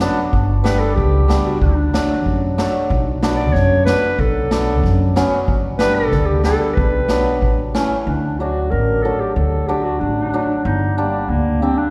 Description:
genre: klezmer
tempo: 93 BPM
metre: 2/4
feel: straight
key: B minor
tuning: A4 = 440 Hz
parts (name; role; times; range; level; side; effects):
- hammered dulcimer; accompaniment; 0.0-11.9 s; E3 to D4; -23 LUFS; equal; slapback echo
- upright bass; bass; 0.0-11.7 s; G1 to F#2; -22 LUFS; equal; none
- street-band drum kit; drums; 0.0-7.9 s; kick drum, snare drum; -24 LUFS; equal; none
- mellow clarinet; melody; 0.6-11.9 s; Bb3 to D5; -22 LUFS; equal; slapback echo
room: light reverb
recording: live gig heard through the venue's PA, recital hall reverb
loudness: -17 LUFS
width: mono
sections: 0.0-8.1 A section; 8.1-11.9 B section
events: none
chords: 0.3 G; 1.6 D; 2.9 Bm; 5.5 G; 6.8 Bm; 7.4 A; 8.1 D; 10.7 Gm

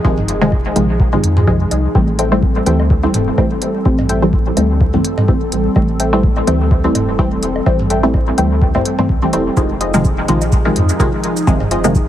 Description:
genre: dub techno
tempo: 126 BPM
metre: 4/4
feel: swing 55% on 16ths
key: A minor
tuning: A4 = 439 Hz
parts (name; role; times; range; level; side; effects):
- airy breathy pad; sustained chords; 0.0-12.1 s; F3 to A4; -22 LUFS; equal; chorus, sidechain pumping
- filtered dub chord stab; stabs; 0.0-12.0 s; C3 to C4; -16 LUFS; equal; chorus, phaser, sidechain pumping, dub echo
- warm sub bass; bass; 0.0-12.1 s; E1 to F2; -19 LUFS; equal; sidechain pumping
- electronic kick drum; drums; 0.0-12.1 s; none; -16 LUFS; equal; overdrive
- electronic toms and woodblock; percussion; 0.2-11.7 s; none; -22 LUFS; right 1 dB; overdrive, sidechain pumping on perc, sidechain pumping on toms
- electronic hi-hat and shaker; drums; 0.3-12.1 s; none; -25 LUFS; right 2 dB; none
- filtered dub chord stab; riff; 2.2-11.8 s; F4 to G5; -26 LUFS; left 2 dB; chorus, sidechain pumping, dub echo
room: light reverb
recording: heavily compressed radio sound, vinyl crackle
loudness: -12 LUFS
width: side -11 dB against mid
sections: 0.0-12.1 A section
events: none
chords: 0.0 Fm7; 1.9 Am7; 9.6 Fm7

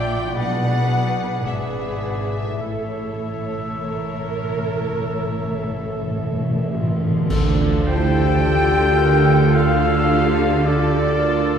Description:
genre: classical, slow romantic movement for symphony orchestra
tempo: 50-58 BPM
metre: 4/4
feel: rubato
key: D minor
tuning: A4 = 440 Hz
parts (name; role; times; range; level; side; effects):
- rich studio violin section; melody; 0.0-11.6 s; A4 to G5; -31 LUFS; left 3 dB; none
- bright clarinet; second line; 0.0-11.6 s; F4 to D5; -30 LUFS; equal; none
- bright concert flute; second line; 0.0-11.6 s; A4 to G5; -29 LUFS; left 1 dB; none
- warm cor anglais; second line; 0.0-11.6 s; D5 to G5; -28 LUFS; equal; none
- warm studio violin section; second line; 0.0-11.6 s; D4 to G5; -34 LUFS; left 2 dB; none
- rich studio viola section; accompaniment; 0.0-11.6 s; D3 to D5; -27 LUFS; right 2 dB; none
- concert harp; arpeggios; 0.0-11.6 s; A2 to E5; -34 LUFS; left 4 dB; none
- rich studio cello section; bass; 0.0-11.6 s; G#2 to D3; -24 LUFS; right 2 dB; none
- warm studio double bass section; bass; 0.0-11.6 s; G#1 to D2; -26 LUFS; right 1 dB; none
- mellow French horn section; sustained chords; 0.4-11.6 s; G#3 to G4; -26 LUFS; left 4 dB; none
- cymbal swell, clash cymbals and concert bass drum; percussion; 2.6-9.5 s; none; -29 LUFS; equal; none
- timpani; percussion; 2.6-7.3 s; A2; -26 LUFS; equal; none
- mellow trombone section; sustained chords; 7.3-11.6 s; A2 to F4; -30 LUFS; right 2 dB; none
- mellow trumpet section; stabs; 7.3-11.6 s; A4; -27 LUFS; left 1 dB; none
- warm tuba; bass; 7.3-11.6 s; D2; -24 LUFS; right 3 dB; none
room: wet concert hall reverb, RT60 2.4 s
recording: heard from further back in the room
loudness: -17 LUFS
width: side -7 dB against mid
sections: 0.0-7.3 A section; 7.3-11.6 B section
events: timpani fill 2.6-7.3; band accent 7.3-8.4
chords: 0.4 E7/B; 2.6 A; 7.3 Dm

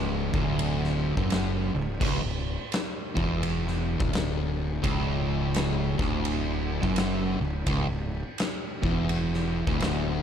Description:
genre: stoner and doom metal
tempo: 85 BPM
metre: 4/4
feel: swing 64% on 8ths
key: C# phrygian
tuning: A4 = 443 Hz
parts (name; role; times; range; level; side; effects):
- fuzz guitar; riff; 0.0-10.2 s; C#2 to F#2; -28 LUFS; equal; distortion
- fuzz fingered electric bass; bass; 0.0-10.2 s; C#1 to F#1; -31 LUFS; equal; overdrive, tube saturation
- oversized low-tuned drum kit; drums; 0.3-10.0 s; crash cymbal, kick drum, ride cymbal, snare drum; -30 LUFS; equal; none
room: little or no reverb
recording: dark, warm production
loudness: -25 LUFS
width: side -8 dB against mid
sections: 0.0-10.2 A section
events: none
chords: 0.0 C#m

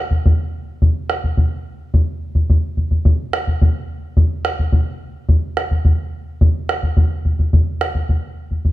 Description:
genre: andean folk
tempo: 107 BPM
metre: 2/4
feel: straight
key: none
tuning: none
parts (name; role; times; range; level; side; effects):
- bombo; percussion; 0.1-8.7 s; none; -15 LUFS; equal; none
room: moderate recital hall reverb, RT60 1.6 s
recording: close, detailed microphones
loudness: -16 LUFS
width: side -16 dB against mid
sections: 0.0-8.1 A section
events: none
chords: none

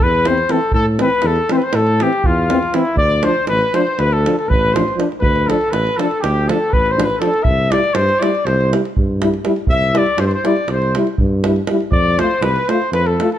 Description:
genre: balkan folk, Balkan brass band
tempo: 241 BPM (eighths)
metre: 9/8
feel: straight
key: C major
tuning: A4 = 440 Hz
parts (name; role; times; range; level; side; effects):
- warm cornet; melody; 0.0-13.4 s; E4 to E5; -18 LUFS; left 3 dB; none
- clear trumpet; second line; 0.0-13.4 s; E4 to E5; -24 LUFS; right 3 dB; none
- mellow tuba; bass; 0.0-13.2 s; A1 to A2; -19 LUFS; equal; none
- mellow euphonium; accompaniment; 0.3-13.3 s; E3 to A3; -24 LUFS; right 6 dB; none
- warm French horn; accompaniment; 0.3-13.3 s; C4 to F4; -23 LUFS; left 6 dB; none
- davul; percussion; 0.3-13.4 s; none; -21 LUFS; right 2 dB; none
room: light reverb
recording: close, detailed microphones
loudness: -13 LUFS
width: side -11 dB against mid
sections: 0.0-13.4 A section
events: none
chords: 0.0 Am; 3.0 Dm; 7.4 C; 11.9 F

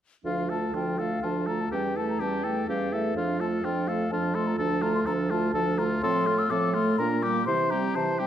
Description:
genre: quick classical-period movement for wind quintet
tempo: 125 BPM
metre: 3/4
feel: rubato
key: D minor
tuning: A4 = 439 Hz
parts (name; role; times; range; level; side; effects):
- dark clarinet; accompaniment; 0.2-8.3 s; A3 to F4; -32 LUFS; right 6 dB; none
- warm French horn; accompaniment; 0.2-8.3 s; E3 to Bb3; -30 LUFS; right 1 dB; none
- mellow bassoon; bass; 0.2-8.3 s; D2 to C3; -30 LUFS; right 1 dB; none
- mellow hollow silver concert flute; melody; 0.3-8.3 s; E5 to E6; -31 LUFS; left 5 dB; none
- clear oboe; second line; 0.3-8.3 s; F4 to C5; -33 LUFS; left 2 dB; none
room: wet recital hall reverb, RT60 1.4 s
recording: dark, warm production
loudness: -24 LUFS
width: side -10 dB against mid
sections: 0.3-8.3 A section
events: none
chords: 0.3 Dm; 1.7 A7/E; 3.2 Dm/F; 4.6 Dm; 6.0 F/A; 7.0 Gm/Bb; 7.5 C

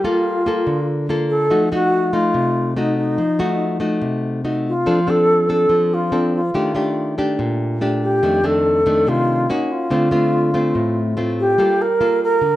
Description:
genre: bossa nova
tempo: 143 BPM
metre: 4/4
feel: straight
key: unclear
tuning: A4 = 437 Hz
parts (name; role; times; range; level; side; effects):
- alto flute; melody; 0.0-12.6 s; Eb4 to Bb4; -18 LUFS; equal; none
- nylon-string guitar; accompaniment; 0.0-12.6 s; F2 to A4; -19 LUFS; equal; none
room: wet studio reverb, RT60 0.5 s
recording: none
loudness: -16 LUFS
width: side -14 dB against mid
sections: 0.0-12.6 A section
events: none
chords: 0.0 Gm9; 1.5 F7b9; 4.9 F6; 6.5 Ebmaj9#11; 8.2 F6; 9.5 Ebm7; 9.9 Dm7; 11.6 Gm9

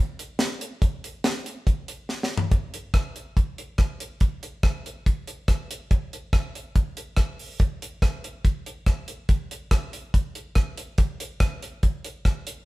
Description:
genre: ska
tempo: 142 BPM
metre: 4/4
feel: straight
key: none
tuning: none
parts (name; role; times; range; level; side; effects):
- deep reggae drum kit; drums; 0.2-12.6 s; hi-hat, kick drum, rim click, snare drum, toms; -23 LUFS; equal; none
room: light reverb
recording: band playing live in one room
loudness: -24 LUFS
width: side -20 dB against mid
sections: 0.0-2.5 A section; 2.5-12.7 B section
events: drum fill 2.1-2.5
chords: none

